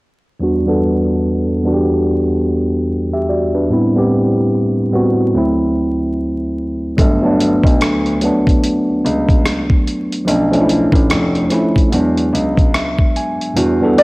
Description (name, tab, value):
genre	lo-fi hip hop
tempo	73 BPM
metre	4/4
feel	swing 61% on 16ths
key	unclear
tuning	A4 = 440 Hz
part	tine electric piano	accompaniment	0.4-14.0 s	D2 to G#5	-14 LUFS	equal	cassette tape, low-pass filter
part	dark concert grand piano	bass	7.0-14.0 s	F1 to E2	-19 LUFS	equal	none
part	dusty soul sampler-style drum kit	drums	7.0-14.0 s	hi-hat, kick drum, rim click	-15 LUFS	equal	cassette tape
part	felt-muted upright piano	melody	14.0 s	D5	-5 LUFS	equal	low-pass filter, cassette tape
room	moderate lush hall reverb, RT60 2.2 s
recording	home recording on cassette, vinyl crackle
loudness	-13 LUFS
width	side -23 dB against mid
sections	0.4-13.6 A section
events	filter sweep on tine electric piano 0.4-13.6; tine electric piano fill 12.3-13.6; kick muted 13.6-14.0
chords	0.4 Em9; 3.7 Am7; 5.3 D7; 7.0 Gmaj7; 10.3 Bm7b5; 11.9 E7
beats	| 0.41 1.23 2.05 2.87 | 3.69 4.51 5.34 6.16 | 6.98 7.80 8.62 9.45 | 10.27 11.09 11.91 12.73 | 13.56